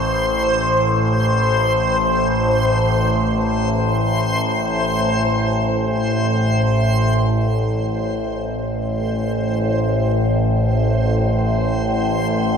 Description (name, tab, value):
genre	dark ambient drone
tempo	free time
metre	none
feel	none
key	A minor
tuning	A4 = 441 Hz
part	overtone-sweeping drone	drone	0.0-12.6 s	A1 to A2	-18 LUFS	equal	chorus, built-in reverb
part	backwards swelling texture	texture	0.0-12.6 s	C5	-22 LUFS	equal	built-in reverb
room	wet echo chamber reverb, RT60 2.4 s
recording	none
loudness	-16 LUFS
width	side -6 dB against mid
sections	0.0-7.3 A section; 7.3-12.6 B section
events	fade-in on synth texture 7.3-12.6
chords	0.0 Am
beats	free time